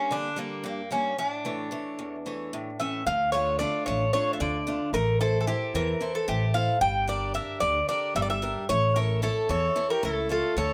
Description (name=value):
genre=greek folk, Greek bouzouki band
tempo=224 BPM (eighths)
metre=7/8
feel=straight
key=unclear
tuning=A4 = 440 Hz
part: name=Greek bouzouki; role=melody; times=0.0-10.7 s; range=Bb3 to G5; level=-29 LUFS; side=equal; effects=plate reverb
part: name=picked steel-string acoustic guitar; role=accompaniment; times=0.0-10.7 s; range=E2 to C#5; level=-35 LUFS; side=equal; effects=none
part: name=upright bass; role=bass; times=3.1-10.7 s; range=G1 to E2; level=-32 LUFS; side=equal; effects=none
part: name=accordion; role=second line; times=9.5-10.7 s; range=E4 to A4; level=-34 LUFS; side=equal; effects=none
room=moderate small room reverb, RT60 0.5 s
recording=none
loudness=-27 LUFS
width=mono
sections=0.0-3.1 A section; 3.1-10.7 B section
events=none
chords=0.0 Gm; 1.2 A; 3.1 Dm; 4.9 Am; 6.8 Gm; 8.7 A